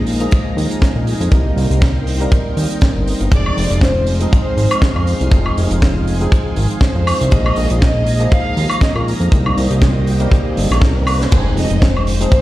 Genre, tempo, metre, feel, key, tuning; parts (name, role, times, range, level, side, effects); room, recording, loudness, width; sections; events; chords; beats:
nu-disco, nu disco; 120 BPM; 4/4; swing 55% on 16ths; F minor; A4 = 440 Hz
barky tine electric piano; accompaniment; 0.0-12.4 s; F3 to Bb4; -21 LUFS; right 1 dB; lush chorus, sidechain pumping
string machine, full ensemble; sustained chords; 0.0-11.3 s; Eb4 to C6; -28 LUFS; equal; ensemble chorus, vintage 12-bit sampler grit, sidechain pumping
fat analog bass; bass; 0.0-12.3 s; F1 to Bb2; -16 LUFS; equal
tight funk drum kit; drums; 0.1-12.4 s; crash cymbal, hi-hat, snare drum, woodblock; -23 LUFS; right 1 dB
kick drum; drums; 0.3-12.4 s; -12 LUFS; equal
warm chamber violin section; melody; 3.3-12.4 s; Ab4 to F5; -23 LUFS; equal; tape echo
riser and impact; sound effects; 9.2-12.4 s; -27 LUFS; equal
light reverb, small room ambience; played on a big sound system in a bare room, stone room reverb; -12 LUFS; side -16 dB against mid
0.0-11.3 A section; 11.3-12.4 B section
riser 9.2-11.3; drum fill 10.8-11.3; band accent 11.2; drop 11.3-12.4; impact 11.3-12.4
0.0 Bb7sus4; 1.3 Cm7; 3.3 Fm7; 7.3 Bb7sus4; 9.3 Cm7; 11.3 Fm7
0.32 0.82 | 1.32 1.82 2.32 2.82 | 3.32 3.82 4.32 4.82 | 5.32 5.82 6.32 6.82 | 7.32 7.82 8.32 8.82 | 9.32 9.82 10.32 10.82 | 11.32 11.82 12.32